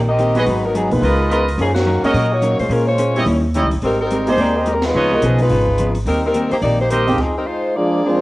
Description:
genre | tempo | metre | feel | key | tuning
jazz, big band swing | 214 BPM | 4/4 | swing 60% on 8ths | Eb major | A4 = 440 Hz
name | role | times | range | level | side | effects
vintage hollow-body jazz guitar | accompaniment | 0.0-7.1 s | Ab2 to C5 | -23 LUFS | left 1 dB | cassette tape
upright bass | bass | 0.0-7.2 s | G1 to Bb2 | -19 LUFS | equal | none
dark saxophone section | melody | 0.1-8.2 s | Eb3 to Eb5 | -18 LUFS | left 1 dB | cassette tape
open jazz drum kit | drums | 0.2-7.3 s | crash cymbal, hi-hat, kick drum, ride cymbal, snare drum | -31 LUFS | equal | none
dark baby grand piano | accompaniment | 0.3-7.2 s | F2 to G4 | -22 LUFS | right 2 dB | cassette tape
clear trumpet section | stabs | 0.4-7.2 s | Fb4 to Eb5 | -22 LUFS | right 2 dB | cassette tape
clear trombone section | second line | 7.8-8.2 s | F3 to D4 | -16 LUFS | right 2 dB | cassette tape
room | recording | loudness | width
moderate spring reverb, RT60 1.2 s, studio ambience | home recording on cassette | -14 LUFS | side -18 dB against mid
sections
0.0-8.2 A section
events
band accent 1.7, 4.8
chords
0.5 Abm7; 1.0 Db13; 1.6 Gb6; 2.7 Bbm9; 3.3 Eb7b9; 3.8 Abmaj9; 4.9 Db9; 6.1 Eb6; 7.2 Fm7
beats
0.19 | 0.47 0.75 1.03 1.31 | 1.59 1.87 2.15 2.42 | 2.71 2.98 3.27 3.54 | 3.83 4.10 4.38 4.66 | 4.94 5.22 5.50 5.78 | 6.06 6.34 6.62 6.90 | 7.18 7.46 7.74 8.02

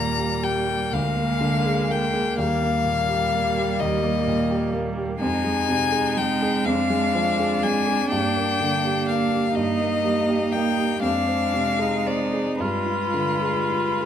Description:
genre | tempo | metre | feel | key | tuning
classical, slow romantic movement for piano quartet | 42 BPM (dotted quarters) | 6/8 | uneven beats, rubato | unclear | A4 = 438 Hz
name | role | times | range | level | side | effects
clear violin | melody | 0.0-14.1 s | B4 to Bb5 | -24 LUFS | left 7 dB | none
clear cello | second line | 0.0-14.1 s | G3 to Bb3 | -28 LUFS | right 7 dB | none
rich viola | accompaniment | 0.0-14.1 s | Bb3 to F4 | -29 LUFS | right 2 dB | none
warm grand piano | accompaniment | 0.0-14.1 s | D2 to Ab4 | -25 LUFS | right 1 dB | none
room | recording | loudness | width
moderate recital hall reverb, RT60 1.6 s | close, detailed microphones | -20 LUFS | side -9 dB against mid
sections
0.0-14.1 A section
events
none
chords
0.0 Eb; 0.9 Bb7/D; 2.4 Eb; 5.2 Fm7; 6.7 Ddim/F; 8.1 Gm; 9.6 Eb/G; 11.0 Dm7b5/F; 12.6 G7b9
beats
0.93 | 2.38 3.81 | 5.21 6.67 | 8.13 9.57 | 11.03 12.59

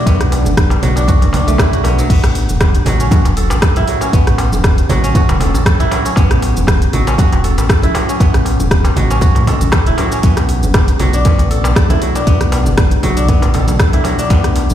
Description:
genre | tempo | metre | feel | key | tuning
afro house | 118 BPM | 4/4 | swing 54% on 16ths | unclear | A4 = 440 Hz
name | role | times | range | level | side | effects
ethereal airy pad | sustained chords | 0.0-14.7 s | A2 to D4 | -22 LUFS | equal | ensemble chorus, built-in reverb, sidechain pumping
kora | arpeggios | 0.0-14.7 s | F#3 to A4 | -19 LUFS | equal | sidechain pumping, ping-pong delay
round analog bass | bass | 0.1-14.7 s | E1 to A2 | -16 LUFS | equal | sidechain pumping
afro-pop drum kit | drums | 0.1-14.7 s | cabasa, crash cymbal, hi-hat, rim click | -21 LUFS | equal | none
electronic kick drum | drums | 0.1-14.4 s | none | -12 LUFS | equal | none
darbuka | percussion | 0.1-14.7 s | none | -25 LUFS | left 2 dB | none
congas | percussion | 0.5-14.7 s | none | -21 LUFS | right 3 dB | none
room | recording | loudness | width
light reverb, digital ambience | played on a big sound system in a bare room, large studio reverb | -10 LUFS | side -11 dB against mid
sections
0.0-14.7 A section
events
none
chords
0.0 Bm7; 2.1 A; 10.2 Bm7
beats
| 0.07 0.58 1.08 1.59 | 2.10 2.61 3.12 3.63 | 4.13 4.64 5.15 5.66 | 6.17 6.68 7.19 7.69 | 8.20 8.71 9.22 9.73 | 10.24 10.74 11.25 11.76 | 12.27 12.78 13.29 13.80 | 14.30

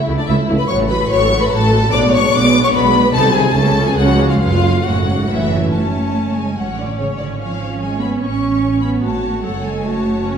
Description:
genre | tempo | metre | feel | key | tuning
quick classical-period movement for string orchestra | 147 BPM | 3/4 | rubato | F# minor | A4 = 440 Hz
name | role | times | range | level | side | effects
warm symphonic violin section | second line | 0.0-10.3 s | D4 to C#6 | -20 LUFS | left 3 dB | none
rich symphonic viola section | accompaniment | 0.1-10.4 s | Eb3 to A4 | -21 LUFS | right 1 dB | none
dark symphonic cello section | bass | 0.1-10.3 s | F#2 to C#4 | -19 LUFS | right 2 dB | none
rich symphonic double bass section | bass | 0.1-10.4 s | F#1 to C#2 | -20 LUFS | right 3 dB | none
clear symphonic violin section | melody | 0.2-10.4 s | C#5 to D6 | -21 LUFS | left 5 dB | none
room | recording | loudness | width
wet recital hall reverb, RT60 1.7 s | heard from further back in the room | -13 LUFS | side -7 dB against mid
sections
0.0-5.7 A section; 5.7-10.4 B section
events
none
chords
0.0 A/C#; 0.7 F#m/A; 1.9 G#dim/B; 3.1 Cdim7; 3.5 F#m/C#; 4.0 C#; 4.4 F#m; 7.0 C#7/G#; 8.2 F#m/A; 9.4 F#m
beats
0.29 | 0.69 1.10 1.51 | 1.92 2.32 2.73 | 3.13 3.54 3.96 | 4.40 4.85 5.29 | 5.74 6.16 6.58 | 6.99 7.41 7.81 | 8.22 8.63 9.04 | 9.45 9.85 10.26

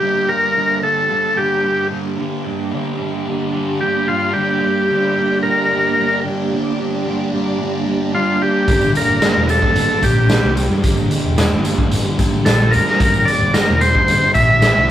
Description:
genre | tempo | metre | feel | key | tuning
psychedelic rock | 111 BPM | 4/4 | straight | G minor | A4 = 438 Hz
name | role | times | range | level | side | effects
combo organ | melody | 0.0-14.9 s | F4 to E5 | -16 LUFS | equal | none
string machine, violins | sustained chords | 0.0-14.9 s | Bb3 to G4 | -22 LUFS | right 3 dB | ensemble chorus
thick fuzz guitar | riff | 0.0-14.9 s | G2 to G3 | -23 LUFS | left 1 dB | distortion, phaser
fingered electric bass | bass | 8.7-14.9 s | E1 to G2 | -20 LUFS | equal | none
raw garage drum kit | drums | 8.7-14.8 s | hi-hat, kick drum, snare drum | -17 LUFS | equal | none
tambourine | percussion | 8.8-14.7 s | none | -37 LUFS | left 7 dB | none
room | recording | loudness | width
wet studio reverb, RT60 0.6 s | rough rehearsal-room recording | -14 LUFS | side -11 dB against mid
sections
0.0-14.9 A section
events
none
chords
0.0 Gm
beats
| 0.02 0.56 1.10 1.64 | 2.18 2.73 3.27 3.81 | 4.35 4.89 5.43 5.97 | 6.52 7.06 7.60 8.14 | 8.68 9.22 9.76 10.30 | 10.85 11.39 11.93 12.47 | 13.01 13.55 14.09 14.63

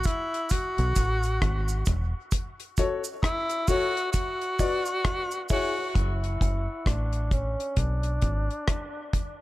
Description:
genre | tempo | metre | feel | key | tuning
dub reggae | 66 BPM | 4/4 | swing 61% on 16ths | F# minor | A4 = 440 Hz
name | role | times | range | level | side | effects
clear tenor saxophone | melody | 0.0-9.1 s | C#4 to F#4 | -30 LUFS | equal | low-pass filter, dub echo
cabasa | percussion | 0.0-5.7 s | none | -37 LUFS | right 6 dB | high-pass filter on perc
deep reggae drum kit | drums | 0.1-9.4 s | hi-hat, kick drum, rim click | -27 LUFS | equal | none
deep dub fingered electric bass | bass | 0.8-8.5 s | E1 to B1 | -27 LUFS | equal | none
warm upright piano | stabs | 2.8-5.8 s | E4 to D5 | -31 LUFS | left 4 dB | dub echo
room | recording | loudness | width
light reverb | none | -25 LUFS | side -17 dB against mid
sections
0.0-6.0 A section; 6.0-9.4 B section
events
break 0.0-2.3; filter sweep on tenor saxophone 6.0-9.4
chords
0.0 N.C.; 0.5 B5; 2.3 F#m; 4.1 Bm; 5.0 C#m; 6.0 F#m; 7.8 Bm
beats
0.51 1.41 | 2.32 3.23 4.14 5.04 | 5.95 6.86 7.77 8.68

